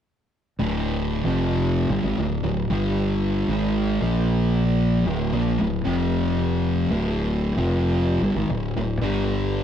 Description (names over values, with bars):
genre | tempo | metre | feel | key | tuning
metal | 76 BPM | 4/4 | swing 66% on 8ths | D minor | A4 = 441 Hz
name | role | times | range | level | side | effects
thick fuzz guitar | riff | 0.6-9.6 s | D2 to Bb3 | -22 LUFS | equal | distortion
growling fingered electric bass | bass | 0.6-9.6 s | D1 to Bb1 | -26 LUFS | equal | overdrive
room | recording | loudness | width
moderate studio ambience, RT60 0.5 s | rough rehearsal-room recording, warm saturation | -20 LUFS | side -9 dB against mid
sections
0.6-9.6 A section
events
none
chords
0.6 Dm; 2.6 G5; 3.4 G#5; 3.9 Bb5; 4.9 Dm; 5.7 F5; 6.9 Dm; 8.9 G5